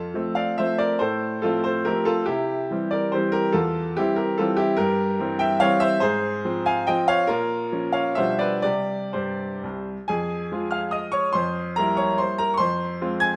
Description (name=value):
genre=classical, romantic triple-time dance for piano with dotted rhythms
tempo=118-154 BPM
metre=3/4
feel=rubato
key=F major, F minor from 4.8 s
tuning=A4 = 440 Hz
part: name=bright grand piano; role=solo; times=0.0-13.4 s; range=C2 to Ab6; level=-24 LUFS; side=equal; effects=none
room=moderate recital hall reverb, RT60 1.4 s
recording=none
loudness=-23 LUFS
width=mono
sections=0.0-10.1 A section; 10.1-13.4 B section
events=none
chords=0.0 F; 1.0 F/A; 2.3 C; 3.6 C/E; 4.8 C7/G; 6.0 Fm/Ab; 7.3 Bbm; 8.2 G7/B; 8.6 C5; 10.1 Fm; 11.3 C7/F; 12.6 Fm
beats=0.13 0.59 | 1.01 1.44 1.87 | 2.28 2.71 3.14 | 3.55 3.97 4.39 | 4.78 5.20 5.62 | 6.02 6.44 6.87 | 7.28 7.71 8.17 | 8.64 9.14 9.63 | 10.09 10.51 10.94 | 11.35 11.77 12.19 | 12.59 13.01